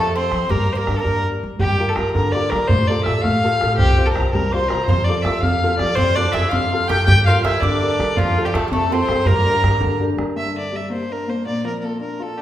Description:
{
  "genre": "celtic folk, Celtic jig",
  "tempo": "110 BPM (dotted quarters)",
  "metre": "6/8",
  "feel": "straight",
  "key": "G dorian",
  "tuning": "A4 = 440 Hz",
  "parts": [
    { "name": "rich fiddle", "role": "melody", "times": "0.0-12.4 s", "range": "F4 to G5", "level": "-21 LUFS", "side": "equal", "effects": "none" },
    { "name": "Irish bouzouki", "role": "second line", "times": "0.0-1.2, 6.0-10.0 s", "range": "F3 to G4", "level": "-27 LUFS", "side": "right 4 dB", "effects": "none" },
    { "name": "tin whistle", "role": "second line", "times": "0.0-10.0 s", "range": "F5 to G6", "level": "-26 LUFS", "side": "left 2 dB", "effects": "none" },
    { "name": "warm upright piano", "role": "accompaniment", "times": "0.0-12.4 s", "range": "G2 to C5", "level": "-23 LUFS", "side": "left 1 dB", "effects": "none" },
    { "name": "upright bass", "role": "bass", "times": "0.0-10.3 s", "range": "C2 to G3", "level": "-22 LUFS", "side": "equal", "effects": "none" },
    { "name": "bodhran", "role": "percussion", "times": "0.1-10.3 s", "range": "none", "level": "-23 LUFS", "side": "right 1 dB", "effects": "none" }
  ],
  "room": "wet recital hall reverb, RT60 1.5 s",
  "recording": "recorded in a church or concert hall",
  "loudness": "-16 LUFS",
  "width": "side -12 dB against mid",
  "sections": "0.0-1.6 A section; 1.6-10.4 A section; 10.4-12.4 B section",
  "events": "none",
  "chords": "0.0 Fadd9; 0.5 Gm; 1.6 Gm7; 2.7 Fadd9/A; 3.8 Csus4; 4.9 Fadd9; 7.1 Gmadd9; 8.2 Fadd9; 9.3 Gm; 11.5 Bb"
}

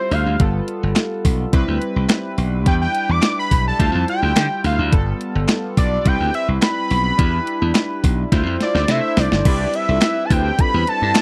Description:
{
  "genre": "early-eighties boogie funk",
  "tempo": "106 BPM",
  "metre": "4/4",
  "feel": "straight",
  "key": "unclear",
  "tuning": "A4 = 441 Hz",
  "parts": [
    { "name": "fat analog lead", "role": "melody", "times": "0.0-11.2 s", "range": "C5 to D6", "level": "-23 LUFS", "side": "equal", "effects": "slapback echo" },
    { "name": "chorused polysynth", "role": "accompaniment", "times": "0.0-11.2 s", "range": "G3 to C5", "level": "-27 LUFS", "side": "equal", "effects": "none" },
    { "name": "slap bass", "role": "bass", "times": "0.1-11.1 s", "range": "G1 to D3", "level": "-22 LUFS", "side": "equal", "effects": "none" },
    { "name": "crisp 8-bit digital drum machine", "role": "drums", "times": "0.1-11.2 s", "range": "crash cymbal, handclaps, hi-hat, kick drum, snare drum", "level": "-19 LUFS", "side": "equal", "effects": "overdrive" },
    { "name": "mellow synth brass", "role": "second line", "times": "9.5-11.1 s", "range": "D4 to C5", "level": "-31 LUFS", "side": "equal", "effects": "chorus" }
  ],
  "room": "digital ambience",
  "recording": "dry, close 1970s-style studio recording",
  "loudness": "-18 LUFS",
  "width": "mono",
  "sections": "0.0-9.5 A section; 9.5-11.2 B section",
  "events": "analog synth lead solo 0.0-9.5; drum fill 8.3-9.5",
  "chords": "0.4 G9; 1.5 Cmaj7; 2.7 Em7; 3.8 Dm11; 4.9 G9; 6.1 Cmaj7; 7.2 Em7; 8.3 Dm11; 8.9 C69; 9.5 Cmaj9"
}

